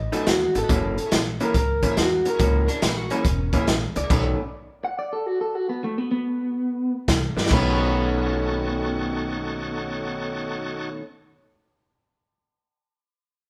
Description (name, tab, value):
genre	electric blues shuffle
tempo	141 BPM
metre	4/4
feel	swing 66% on 8ths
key	B mixolydian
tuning	A4 = 440 Hz
part	electric guitar through a small old amp	melody	0.0-10.9 s	A3 to F#5	-28 LUFS	equal	spring reverb, analog delay
part	upright bass	bass	0.0-4.3, 7.1-10.9 s	E1 to G2	-30 LUFS	equal	none
part	bright tonewheel organ	accompaniment	0.1-4.1, 7.4-10.9 s	D#4 to E5	-35 LUFS	equal	slow rotary speaker, overdrive
part	electric guitar through a small old amp	riff	0.1-4.4, 7.1-11.0 s	F#2 to D#4	-30 LUFS	equal	none
part	crunchy breakbeat drum kit	drums	0.1-4.2, 7.1-7.6 s	crash cymbal, hi-hat, kick drum, snare drum	-26 LUFS	equal	none
part	electric slide guitar	second line	2.7-3.5, 7.5-10.9 s	B3 to F#4	-34 LUFS	equal	none
room	moderate large studio reverb, RT60 1.1 s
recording	band playing live in one room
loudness	-24 LUFS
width	mono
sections	0.0-7.5 A section; 7.5-10.9 B section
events	stop 4.1-7.1; drum fill 7.3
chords	0.0 B7; 0.7 F#7; 4.1 B9; 7.1 C9; 7.5 B9